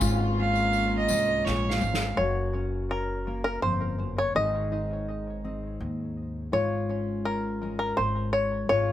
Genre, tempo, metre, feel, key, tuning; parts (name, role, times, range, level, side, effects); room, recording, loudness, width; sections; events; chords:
acoustic folk duo or small band; 83 BPM; 3/4; straight; Db major; A4 = 440 Hz
fingerpicked steel-string acoustic guitar; accompaniment; 0.0-8.9 s; F2 to Ab4; -31 LUFS; left 1 dB
warm chamber string section; sustained chords; 0.0-2.2 s; Bb3 to F4; -35 LUFS; equal
upright bass; bass; 0.0-8.9 s; Gb1 to Eb2; -32 LUFS; equal
soft-mallet drum kit; drums; 0.0-2.1 s; kick drum, ride cymbal, snare drum; -35 LUFS; equal
tambourine; percussion; 0.0-2.1 s; -38 LUFS; left 5 dB
warm fiddle; second line; 0.4-2.2 s; Db5 to F5; -27 LUFS; right 3 dB
bluegrass banjo; melody; 2.2-8.9 s; Bb4 to Eb5; -28 LUFS; left 1 dB; tape echo
moderate studio reverb, RT60 0.9 s; -25 LUFS; side -12 dB against mid
0.0-2.2 A section; 2.2-8.9 B section
fiddle solo 0.0-2.2; drum fill 1.5-2.2
0.0 Db/Ab; 2.2 Gb; 4.3 Ab; 6.5 Db/Ab